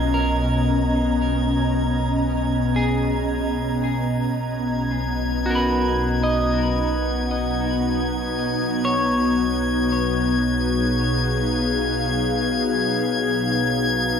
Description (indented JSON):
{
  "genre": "ambient",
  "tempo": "free time",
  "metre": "none",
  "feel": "none",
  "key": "unclear",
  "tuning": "A4 = 439 Hz",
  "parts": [
    { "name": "ethereal airy pad", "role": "sustained chords", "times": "0.0-14.2 s", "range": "B2 to A#5", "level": "-22 LUFS", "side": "left 1 dB", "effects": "ensemble chorus, built-in reverb" },
    { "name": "electric guitar at the edge of break-up", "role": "arpeggios", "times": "0.0-12.5 s", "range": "E#4 to D#5", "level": "-28 LUFS", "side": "right 1 dB", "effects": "harmonic tremolo, ping-pong delay" },
    { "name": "warm sub bass", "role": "bass", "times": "0.0-14.2 s", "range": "B1", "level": "-28 LUFS", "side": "right 1 dB", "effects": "none" },
    { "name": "drifting glass-harmonics texture", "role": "texture", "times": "0.0-14.2 s", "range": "G#6", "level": "-28 LUFS", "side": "left 3 dB", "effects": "chorus, built-in reverb" },
    { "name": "organ-like drone", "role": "drone", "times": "5.8-14.2 s", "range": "F#3 to B3", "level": "-27 LUFS", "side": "left 1 dB", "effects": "ensemble chorus, built-in reverb" }
  ],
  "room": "wet concert hall reverb, RT60 2.4 s",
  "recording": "none",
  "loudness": "-19 LUFS",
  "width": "side -7 dB against mid",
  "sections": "0.0-14.2 A section",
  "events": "fade-in on clean electric guitar 0.0-14.2; fade-out on sub bass 0.0-14.2",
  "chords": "0.0 C#7/B; 4.3 G#m7/B; 8.6 C#7/B",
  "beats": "free time"
}